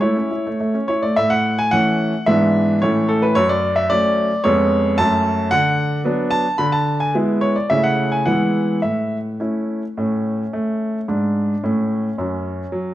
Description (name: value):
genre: classical-period piano sonatina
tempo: 102-114 BPM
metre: 2/4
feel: rubato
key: A major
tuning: A4 = 439 Hz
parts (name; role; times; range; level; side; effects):
- clear baby grand piano; solo; 0.0-12.9 s; E#2 to B5; -16 LUFS; equal; none
room: moderate recital hall reverb, RT60 1.6 s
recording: close, detailed microphones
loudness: -16 LUFS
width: side -14 dB against mid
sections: 0.0-1.2 A section; 1.2-10.0 B section; 10.0-12.9 B section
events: none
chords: 0.0 A; 2.3 E7/G#; 2.8 A; 3.4 F#m; 4.5 C#7/E#; 5.0 F#m; 5.5 Bm/D; 6.6 E7/D; 7.7 A/C#; 8.3 E; 8.8 A; 11.1 N.C.; 11.6 A; 12.2 F#5